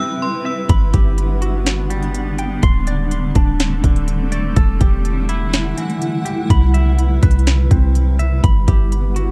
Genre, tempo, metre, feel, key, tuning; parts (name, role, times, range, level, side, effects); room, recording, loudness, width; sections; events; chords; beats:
hip hop, atmospheric cloud-rap; 124 BPM; 4/4; half-time; G major; A4 = 440 Hz
metallic FM bell; melody; 0.0-0.7 s; C6 to E6; -29 LUFS; equal; chorus, tape echo
granular cloud pad; sustained chords; 0.0-9.3 s; C3 to F#5; -26 LUFS; equal; built-in reverb, sidechain pumping
semi-hollow electric guitar; arpeggios; 0.0-9.3 s; D3 to C6; -29 LUFS; equal; tape echo
clean 808-style bass; bass; 0.7-9.3 s; D1 to C2; -18 LUFS; equal
trap drum kit; drums; 0.7-9.3 s; hi-hat, kick drum, snare drum; -19 LUFS; equal
little or no reverb; dark, warm production; -16 LUFS; mono
0.7-9.3 A section
0.0 Cmaj7; 0.7 Gmaj7; 2.6 D7sus4; 4.6 Em11; 6.5 Cmaj7; 8.4 Gmaj7
0.21 | 0.69 1.18 1.66 2.15 | 2.63 3.11 3.60 4.08 | 4.57 5.05 5.53 6.02 | 6.50 6.98 7.47 7.95 | 8.44 8.92